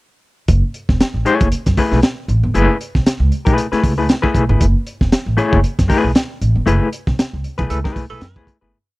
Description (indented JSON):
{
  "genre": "funk",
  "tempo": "116 BPM",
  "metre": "4/4",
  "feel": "swing 56% on 16ths",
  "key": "F# minor",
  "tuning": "A4 = 440 Hz",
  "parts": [
    { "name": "upright bass", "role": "bass", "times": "0.5-8.7 s", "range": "E1 to F#2", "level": "-17 LUFS", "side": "equal", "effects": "none" },
    { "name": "crunchy breakbeat drum kit", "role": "drums", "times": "0.5-8.6 s", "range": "hi-hat, kick drum, snare drum", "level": "-16 LUFS", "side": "equal", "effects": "none" },
    { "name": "clean electric guitar", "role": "accompaniment", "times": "1.3-8.8 s", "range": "A3 to C#5", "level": "-17 LUFS", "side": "left 3 dB", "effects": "tremolo" },
    { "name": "breathy tenor saxophone", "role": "second line", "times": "7.7-8.4 s", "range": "A4", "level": "-32 LUFS", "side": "right 6 dB", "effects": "none" }
  ],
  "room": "studio ambience",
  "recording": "dry, close 1970s-style studio recording",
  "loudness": "-14 LUFS",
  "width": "side -20 dB against mid",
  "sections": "0.5-8.7 groove",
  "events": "fade-out 6.7-8.7; band accent 6.7-8.7",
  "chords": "0.5 F#m11"
}